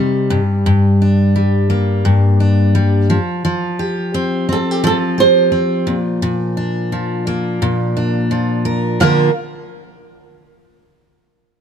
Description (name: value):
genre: pop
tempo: 86 BPM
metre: 4/4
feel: swing 55% on 16ths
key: Bb major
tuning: A4 = 444 Hz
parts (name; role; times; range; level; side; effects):
- flamenco guitar; melody; 0.0-0.3, 4.5-9.3 s; Eb4 to F5; -15 LUFS; right 5 dB; none
- picked steel-string acoustic guitar; accompaniment; 0.0-9.3 s; G2 to Bb4; -14 LUFS; left 1 dB; none
room: light reverb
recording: close, detailed microphones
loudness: -13 LUFS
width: side -8 dB against mid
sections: 0.0-9.0 A section; 9.0-11.6 B section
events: none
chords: 0.3 Gm; 3.1 Fsus2; 5.9 Bb